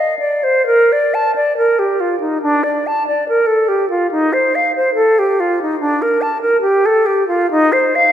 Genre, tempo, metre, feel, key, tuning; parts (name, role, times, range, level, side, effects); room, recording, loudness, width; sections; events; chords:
classical, baroque-style fantasia for unaccompanied flute; 62-72 BPM; 4/4; rubato; Bb major; A4 = 440 Hz
silver concert flute; solo; 0.0-8.1 s; D4 to A5; -12 LUFS; equal
wet church reverb, RT60 2.5 s; -12 LUFS; side -10 dB against mid
0.7-8.1 A section